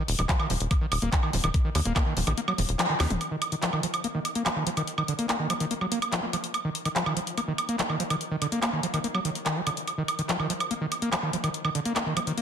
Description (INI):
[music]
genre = psychedelic trance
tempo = 144 BPM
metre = 4/4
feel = straight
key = Eb harmonic minor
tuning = A4 = 441 Hz
[part]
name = screaming distorted acid line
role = riff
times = 0.0-12.4 s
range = D3 to Bb3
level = -29 LUFS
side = equal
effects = distortion, chorus, auto-pan, sidechain pumping, ping-pong delay
[part]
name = tight sequencer bass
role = bass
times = 0.1-3.2 s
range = Eb1 to Eb2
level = -27 LUFS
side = equal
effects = none
[part]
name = drum and bass drum kit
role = drums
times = 0.1-12.4 s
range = handclaps, hi-hat, snare drum, toms, woodblock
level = -28 LUFS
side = right 1 dB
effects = none
[part]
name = electronic kick drum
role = drums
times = 0.3-2.0 s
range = none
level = -25 LUFS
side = equal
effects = none
[sound]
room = moderate digital room reverb, RT60 1.1 s, digital ambience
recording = dense, heavily limited modern master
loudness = -25 LUFS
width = side -8 dB against mid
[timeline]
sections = 0.0-3.2 A section; 3.2-12.4 B section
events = drop 0.0-3.2; kick drops out 2.4-3.2; band accent 2.8; drum fill 3.0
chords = 0.0 Eb5